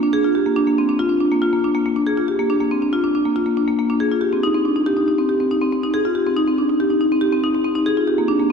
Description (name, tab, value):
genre	rock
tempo	280 BPM (eighths)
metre	9/8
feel	straight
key	unclear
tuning	A4 = 442 Hz
part	marimba with medium mallets	solo	0.0-8.5 s	Bb3 to Ab4	-16 LUFS	equal	none
room	wet lush hall reverb, RT60 2.8 s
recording	dreamy mix soaked in reverb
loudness	-16 LUFS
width	side -6 dB against mid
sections	0.1-8.5 A section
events	none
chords	none